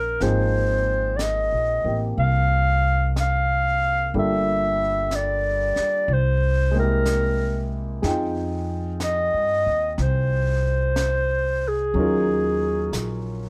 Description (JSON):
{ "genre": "jazz ballad", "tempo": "61 BPM", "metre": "4/4", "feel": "swing 68% on 8ths", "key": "F minor", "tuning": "A4 = 440 Hz", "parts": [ { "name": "mellow clarinet", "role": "melody", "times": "0.0-13.3 s", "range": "Ab4 to F5", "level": "-25 LUFS", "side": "equal", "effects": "none" }, { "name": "warm grand piano", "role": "accompaniment", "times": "0.0-13.5 s", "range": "F3 to G5", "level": "-31 LUFS", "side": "equal", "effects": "none" }, { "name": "upright bass", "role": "bass", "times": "0.0-13.5 s", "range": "G1 to G2", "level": "-26 LUFS", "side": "equal", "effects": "none" }, { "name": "jazz brush drum kit", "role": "drums", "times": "0.2-13.5 s", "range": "brushed snare drum, hi-hat, snare drum", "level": "-38 LUFS", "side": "equal", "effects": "none" } ], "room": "light reverb", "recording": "dark, warm production", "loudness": "-22 LUFS", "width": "mono", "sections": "0.0-13.5 A section", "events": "none", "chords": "0.2 Ab69; 4.1 Gm9; 6.1 C7b13; 8.0 Fm9; 12.0 Ebm7" }